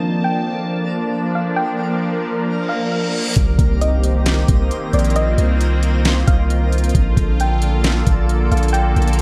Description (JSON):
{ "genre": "hip hop, atmospheric cloud-rap", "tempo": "134 BPM", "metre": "4/4", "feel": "half-time", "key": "C dorian", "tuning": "A4 = 439 Hz", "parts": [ { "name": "sweeping resonant pad", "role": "sustained chords", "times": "0.0-9.2 s", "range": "D3 to A5", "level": "-23 LUFS", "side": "equal", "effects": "chorus, sidechain pumping, low-pass filter" }, { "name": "twinkling granular texture", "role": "texture", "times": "0.0-9.2 s", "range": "Bb3 to Eb5", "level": "-34 LUFS", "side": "equal", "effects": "built-in reverb" }, { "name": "soft round pluck", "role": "melody", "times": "0.2-9.2 s", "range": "D5 to G5", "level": "-27 LUFS", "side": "equal", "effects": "chorus, low-pass filter, delay" }, { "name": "reverse cymbal and impact", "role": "sound effects", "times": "2.6-5.2 s", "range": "none", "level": "-30 LUFS", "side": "equal", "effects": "none" }, { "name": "long sustained 808-style bass", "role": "bass", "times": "3.4-9.2 s", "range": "Bb1 to C2", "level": "-19 LUFS", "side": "equal", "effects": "none" }, { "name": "smooth R&B drum kit", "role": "drums", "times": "3.4-9.2 s", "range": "hi-hat, kick drum, snare drum", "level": "-21 LUFS", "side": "equal", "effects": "none" } ], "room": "moderate recital hall reverb, RT60 1.8 s", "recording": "none", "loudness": "-17 LUFS", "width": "mono", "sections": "0.0-3.4 A section; 3.4-9.2 B section", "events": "filter sweep 0.0-3.4; reverse cymbal 2.6-3.4; impact 3.4-5.2", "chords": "0.0 Bbmaj7; 3.4 Cm7; 6.9 Bbmaj7", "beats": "0.23 0.68 1.13 | 1.57 2.02 2.47 2.92 | 3.37 3.81 4.26 4.71 | 5.16 5.61 6.05 6.50 | 6.95 7.40 7.84 8.29 | 8.74 9.19" }